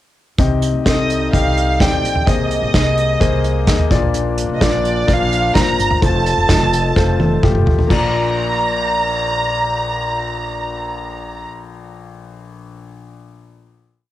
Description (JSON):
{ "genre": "piano-driven pop", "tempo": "128 BPM", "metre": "4/4", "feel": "straight", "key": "Bb major", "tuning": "A4 = 441 Hz", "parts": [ { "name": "warm grand piano", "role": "accompaniment", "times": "0.4-14.1 s", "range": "Bb1 to Eb5", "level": "-21 LUFS", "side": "left 6 dB", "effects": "none" }, { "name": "dark woodwind section", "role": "sustained chords", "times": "0.4-11.4 s", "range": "C3 to D5", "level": "-27 LUFS", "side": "right 1 dB", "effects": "none" }, { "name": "upright bass", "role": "bass", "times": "0.4-11.4 s", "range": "F1 to Eb2", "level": "-21 LUFS", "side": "right 1 dB", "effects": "none" }, { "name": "unplugged drum kit", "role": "drums", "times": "0.4-8.0 s", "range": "crash cymbal, hi-hat, kick drum, snare drum, toms", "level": "-17 LUFS", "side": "right 1 dB", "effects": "cassette tape" }, { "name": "warm studio violin section", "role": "melody", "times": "0.9-11.4 s", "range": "D5 to Bb5", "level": "-19 LUFS", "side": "right 2 dB", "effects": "cassette tape" } ], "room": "light reverb", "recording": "home recording on cassette", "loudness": "-14 LUFS", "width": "side -14 dB against mid", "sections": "0.4-7.9 pre-chorus; 7.9-11.7 final chord", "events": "drum fill 7.0-7.9", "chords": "0.4 Cm; 2.3 Abadd9; 3.9 Bb; 6.0 F; 7.9 Bb" }